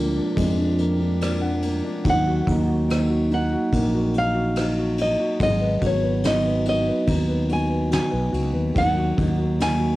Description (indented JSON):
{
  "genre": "acoustic folk-pop ballad",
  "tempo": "72 BPM",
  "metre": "4/4",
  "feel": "straight",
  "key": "unclear",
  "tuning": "A4 = 440 Hz",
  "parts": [
    { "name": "nylon-string guitar", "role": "melody", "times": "0.0-10.0 s", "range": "C#5 to G#5", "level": "-25 LUFS", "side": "equal", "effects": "cassette tape" },
    { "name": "felt-muted upright piano", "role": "accompaniment", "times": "0.0-10.0 s", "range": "D3 to F#5", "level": "-27 LUFS", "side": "left 2 dB", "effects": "cassette tape" },
    { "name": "vibraphone with soft mallets", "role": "arpeggios", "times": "0.0-10.0 s", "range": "E#3 to F#4", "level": "-25 LUFS", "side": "right 2 dB", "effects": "cassette tape" },
    { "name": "mellow fretless electric bass", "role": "bass", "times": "0.0-10.0 s", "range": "G#1 to E#2", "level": "-24 LUFS", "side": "equal", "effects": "wide subtle chorus" },
    { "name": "soft brush drum kit", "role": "drums", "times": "0.4-9.8 s", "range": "kick drum, ride cymbal, rim click, snare drum", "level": "-28 LUFS", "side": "equal", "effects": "none" }
  ],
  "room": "little or no reverb",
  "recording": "home recording on cassette",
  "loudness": "-19 LUFS",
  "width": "side -17 dB against mid",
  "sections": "0.0-10.0 A section",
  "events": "none",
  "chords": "0.0 A#7/D; 2.1 D#madd9; 5.4 G#m7; 8.8 D#m"
}